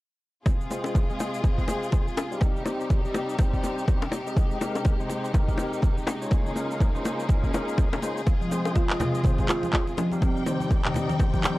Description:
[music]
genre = afro house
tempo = 123 BPM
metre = 4/4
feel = swing 59% on 16ths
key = unclear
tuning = A4 = 438 Hz
[part]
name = rich symphonic string section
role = sustained chords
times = 0.5-11.6 s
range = C3 to G5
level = -33 LUFS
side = equal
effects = sidechain pumping
[part]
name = electronic kick drum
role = drums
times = 0.5-11.4 s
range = none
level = -23 LUFS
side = equal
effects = overdrive
[part]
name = electronic shaker and handclaps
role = drums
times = 0.5-11.6 s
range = none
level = -32 LUFS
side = equal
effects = none
[part]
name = bongos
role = percussion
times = 0.5-11.6 s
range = none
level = -32 LUFS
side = left 2 dB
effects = none
[part]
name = tonewheel organ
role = stabs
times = 0.7-11.6 s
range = G3 to F5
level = -32 LUFS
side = left 1 dB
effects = overdrive, fast rotary speaker, sidechain pumping, low-pass filter, analog delay
[part]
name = congas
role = percussion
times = 8.3-11.6 s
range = none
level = -34 LUFS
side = right 2 dB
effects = none
[part]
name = folk marimba with soft mallets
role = arpeggios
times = 8.4-11.4 s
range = C3 to F4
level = -27 LUFS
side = equal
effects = sidechain pumping
[sound]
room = small room ambience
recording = dry, gritty hardware recording, cassette tape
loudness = -23 LUFS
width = side -18 dB against mid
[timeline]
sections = 0.5-11.6 A section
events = none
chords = 0.5 Cm; 4.4 Abmaj7; 6.3 Eb7sus4; 8.3 Cm

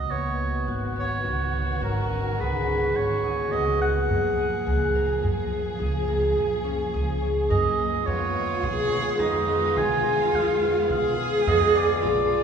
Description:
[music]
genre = contemporary instrumental, chamber music in an uneven meter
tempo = 106 BPM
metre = 7/4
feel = straight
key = unclear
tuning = A4 = 442 Hz
[part]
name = warm oboe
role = melody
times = 0.0-12.4 s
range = Bb4 to Ab5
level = -28 LUFS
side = right 3 dB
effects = none
[part]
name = concert harp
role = arpeggios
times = 0.0-12.4 s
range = Bb3 to Bb4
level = -26 LUFS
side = left 2 dB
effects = none
[part]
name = upright bass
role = bass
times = 0.0-12.4 s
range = Ab1 to Cb3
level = -28 LUFS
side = right 2 dB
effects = none
[part]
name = dark studio string section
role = sustained chords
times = 0.1-12.4 s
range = Bb2 to Ab4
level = -32 LUFS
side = equal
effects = none
[part]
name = warm cello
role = second line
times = 8.1-12.4 s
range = Eb4 to Ab4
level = -26 LUFS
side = right 4 dB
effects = none
[sound]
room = wet church reverb, RT60 3.1 s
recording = recorded in a church or concert hall, small room ambience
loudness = -22 LUFS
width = side -7 dB against mid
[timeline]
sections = 0.1-12.4 A section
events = none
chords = 0.1 Db9sus4; 4.1 Gbmaj9; 8.1 Fm7b5

